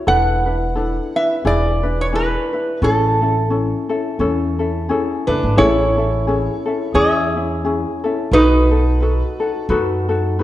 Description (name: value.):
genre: Hawaiian.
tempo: 87 BPM.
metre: 4/4.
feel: swing 57% on 8ths.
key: A major.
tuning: A4 = 441 Hz.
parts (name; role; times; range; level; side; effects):
ukulele; accompaniment; 0.0-10.4 s; C#4 to B4; -20 LUFS; left 3 dB; none.
metal-body resonator slide guitar; melody; 0.1-9.7 s; D4 to F#5; -18 LUFS; right 1 dB; none.
upright bass; bass; 0.1-10.4 s; E1 to F#2; -20 LUFS; equal; none.
room: wet recital hall reverb, RT60 1.7 s.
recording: dark, warm production.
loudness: -15 LUFS.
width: side -14 dB against mid.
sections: 0.0-5.6 A section; 5.6-10.4 A section.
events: none.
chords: 0.1 E7sus4; 1.4 E7; 2.8 Amaj7; 8.3 B7.